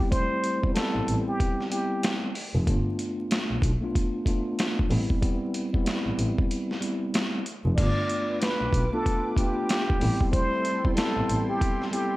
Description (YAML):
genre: hip hop, boom-bap hip-hop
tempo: 94 BPM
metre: 4/4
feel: swing 62% on 16ths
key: A minor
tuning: A4 = 440 Hz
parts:
  - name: trumpet with plunger mute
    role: melody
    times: 0.0-2.2, 7.8-12.2 s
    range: G4 to D5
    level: -29 LUFS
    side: equal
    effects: analog delay
  - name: mellow tine electric piano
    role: accompaniment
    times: 0.0-12.2 s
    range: G3 to F4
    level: -29 LUFS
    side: equal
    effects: medium stereo tremolo, cassette tape
  - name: boom bap sampler-style drum kit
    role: drums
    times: 0.1-12.1 s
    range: crash cymbal, hi-hat, kick drum, snare drum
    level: -27 LUFS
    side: equal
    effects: none
  - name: muted double bass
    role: bass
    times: 1.0-11.4 s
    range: F1 to B1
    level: -28 LUFS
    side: equal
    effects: none
  - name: warm analog pad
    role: sustained chords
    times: 7.8-12.2 s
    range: E4 to D6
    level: -38 LUFS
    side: equal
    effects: chorus
room: light reverb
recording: dark, warm production, vinyl crackle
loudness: -24 LUFS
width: side -18 dB against mid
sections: 0.0-7.8 A section; 7.8-12.2 B section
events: kick muted 6.5-7.8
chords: 0.0 Am7; 2.7 G7 (rootless); 4.9 Am7 (rootless); 7.8 G7; 10.0 Am7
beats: | 0.12 0.76 1.39 2.03 | 2.67 3.31 3.95 4.58 | 5.22 5.86 6.50 7.14 | 7.78 8.41 9.05 9.69 | 10.33 10.97 11.61